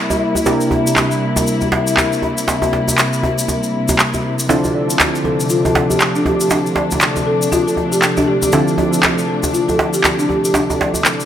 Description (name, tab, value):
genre	afro house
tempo	119 BPM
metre	4/4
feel	swing 59% on 16ths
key	D minor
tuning	A4 = 439 Hz
part	dark studio string section	sustained chords	0.0-11.3 s	C3 to E4	-19 LUFS	left 2 dB	low-pass filter
part	warm analog keys	stabs	0.0-11.3 s	C3 to Bb4	-22 LUFS	right 1 dB	chorus, low-pass filter, digital delay
part	djembe	percussion	0.1-11.0 s	none	-21 LUFS	right 2 dB	none
part	egg shaker	percussion	0.1-11.3 s	none	-24 LUFS	left 3 dB	none
part	electronic handclaps	drums	1.0-11.2 s	none	-16 LUFS	equal	none
part	folk marimba with soft mallets	arpeggios	4.5-10.9 s	D4 to D5	-19 LUFS	left 1 dB	vintage 12-bit sampler grit, digital delay
room	moderate lush hall reverb, RT60 1.8 s, studio reverb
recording	none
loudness	-13 LUFS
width	side -10 dB against mid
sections	0.0-11.3 A section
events	none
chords	0.0 C7; 4.5 Dm7